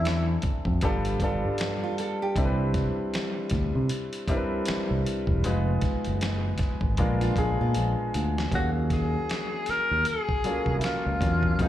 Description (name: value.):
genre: R&B, neo-soul.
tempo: 78 BPM.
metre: 4/4.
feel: swing 58% on 16ths.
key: Eb minor from 8.5 s.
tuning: A4 = 444 Hz.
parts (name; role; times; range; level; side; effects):
breathy tenor saxophone; melody; 0.0-0.4, 8.5-11.7 s; Eb4 to Bb4; -28 LUFS; left 1 dB; slapback echo.
warm baby grand piano; accompaniment; 0.0-11.7 s; E3 to F5; -30 LUFS; left 1 dB; slapback echo.
fingered electric bass; bass; 0.0-11.7 s; E1 to C3; -26 LUFS; equal; none.
dusty soul sampler-style drum kit; drums; 0.1-11.7 s; finger snaps, hi-hat, kick drum, snare drum; -30 LUFS; equal; none.
nylon-string guitar; second line; 1.8-2.6, 7.2-8.5 s; F4 to A4; -34 LUFS; right 7 dB; slapback echo.
room: small room ambience.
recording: live gig heard through the venue's PA, club reverb.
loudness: -24 LUFS.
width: side -12 dB against mid.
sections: 0.0-8.5 A section; 8.5-11.7 B section.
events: drum fill 7.7-8.5.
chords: 0.0 Dm9; 0.8 G7; 2.4 Cmaj9; 5.4 Fm7b5; 7.0 Bb7b9; 8.5 Ebm11.